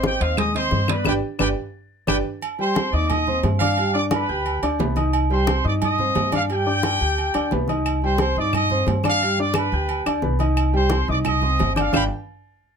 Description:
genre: latin, salsa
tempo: 176 BPM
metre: 4/4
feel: straight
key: C harmonic minor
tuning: A4 = 440 Hz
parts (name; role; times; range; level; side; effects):
- warm concert grand piano; accompaniment; 0.0-12.0 s; G3 to G6; -24 LUFS; left 1 dB; none
- upright bass; bass; 0.0-12.1 s; G1 to G2; -24 LUFS; equal; none
- congas; percussion; 0.0-12.0 s; none; -27 LUFS; left 2 dB; none
- bright trumpet section; melody; 0.1-12.0 s; G4 to Eb6; -24 LUFS; equal; none
- timbales and agogo bells; percussion; 0.2-12.0 s; none; -27 LUFS; right 8 dB; none
- claves; percussion; 0.4-2.2, 7.9-12.0 s; none; -30 LUFS; left 8 dB; none
room: light reverb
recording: close, detailed microphones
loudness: -19 LUFS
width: side -6 dB against mid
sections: 0.0-2.4 A section; 2.4-12.8 B section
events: band accent 1.1-2.4, 11.9-12.8; drum fill 1.9-2.4, 11.9-12.8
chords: 0.0 Ab; 1.1 G; 2.4 Cm; 3.8 G7; 5.1 Cm; 6.5 G; 7.9 Cm; 9.2 G7; 10.6 Cm; 11.9 G7(no3)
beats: 0.04 0.38 0.71 | 1.05 1.39 1.73 2.07 | 2.41 2.75 3.09 3.43 | 3.77 4.11 4.45 4.79 | 5.13 5.47 5.81 6.15 | 6.49 6.83 7.17 7.51 | 7.85 8.19 8.54 8.88 | 9.21 9.55 9.90 10.24 | 10.58 10.92 11.26 11.60 | 11.94

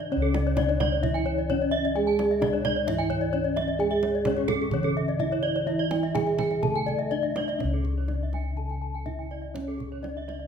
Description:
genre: Balinese gamelan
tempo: 127 BPM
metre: 4/4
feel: uneven beats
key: C# pelog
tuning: A4 = 439 Hz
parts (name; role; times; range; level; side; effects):
- gamelan-type bronze metallophone; melody; 0.0-10.5 s; C#4 to A4-20c; -29 LUFS; right 1 dB; none
- gamelan-type bronze metallophone; accompaniment; 0.0-7.6 s; C#3 to A3-20c; -33 LUFS; right 3 dB; none
- gamelan-type bronze metallophone; arpeggios; 0.0-10.4 s; A4-20c to A5-20c; -32 LUFS; right 4 dB; none
- gamelan-type bossed gongs; bass; 0.0-10.5 s; C#2 to G#4-30c; -31 LUFS; left 1 dB; none
- kendang; percussion; 0.0-10.4 s; none; -34 LUFS; right 4 dB; none
- gamelan-type bronze metallophone; arpeggios; 0.1-10.5 s; G#4-30c to A5-20c; -31 LUFS; left 6 dB; none
room: wet recital hall reverb, RT60 1.7 s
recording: minimal, uncompressed stereo recording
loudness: -24 LUFS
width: side -7 dB against mid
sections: 0.1-7.6 A section; 7.6-10.5 B section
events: none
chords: none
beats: | 0.10 0.57 1.03 1.49 | 1.95 2.42 2.88 3.34 | 3.80 4.27 4.73 5.20 | 5.67 6.15 6.63 7.11 | 7.60 8.08 8.57 9.06 | 9.54 10.03

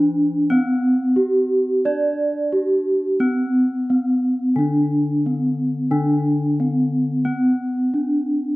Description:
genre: gamelan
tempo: 89 BPM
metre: 4/4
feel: straight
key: unclear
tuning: A4 = 441 Hz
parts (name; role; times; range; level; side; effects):
- gamelan-type bronze metallophone; melody; 0.0-8.6 s; C4-45c to D5; -18 LUFS; equal; none
- gamelan-type bronze metallophone; accompaniment; 0.0-8.6 s; D3 to D4; -25 LUFS; left 1 dB; slapback echo
room: light reverb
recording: recorded outdoors, with no room sound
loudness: -17 LUFS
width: side -20 dB against mid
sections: 0.0-8.6 A section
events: none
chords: none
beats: 0.51 1.18 | 1.85 2.53 3.20 3.88 | 4.55 5.22 5.90 6.57 | 7.25 7.92

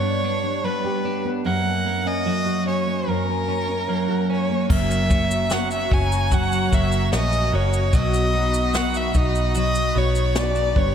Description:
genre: acoustic pop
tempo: 74 BPM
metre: 4/4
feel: straight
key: unclear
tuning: A4 = 440 Hz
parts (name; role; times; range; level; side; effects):
- warm violin; melody; 0.0-10.9 s; A#4 to G#5; -24 LUFS; equal; none
- nylon-string guitar; accompaniment; 0.0-10.9 s; F#2 to G4; -24 LUFS; right 1 dB; double-tracked left and right
- twelve-string electric guitar; arpeggios; 0.0-10.9 s; F#3 to G4; -32 LUFS; right 4 dB; lush chorus, ping-pong delay
- warm chamber string section; sustained chords; 4.7-10.9 s; D4 to B5; -31 LUFS; equal; none
- vintage muted fingered electric bass; bass; 4.7-10.9 s; F#1 to B1; -23 LUFS; equal; none
- jazz brush drum kit; drums; 4.7-10.9 s; crash cymbal, kick drum, shaker, snare drum; -23 LUFS; left 1 dB; none
room: moderate plate reverb, RT60 2.8 s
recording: dreamy mix soaked in reverb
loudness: -19 LUFS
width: side -8 dB against mid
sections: 0.0-4.7 A section; 4.7-10.9 B section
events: none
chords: 0.0 G; 1.5 F#; 7.9 B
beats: 0.65 | 1.46 2.27 3.08 3.89 | 4.70 5.51 6.32 7.12 | 7.93 8.74 9.55 10.36

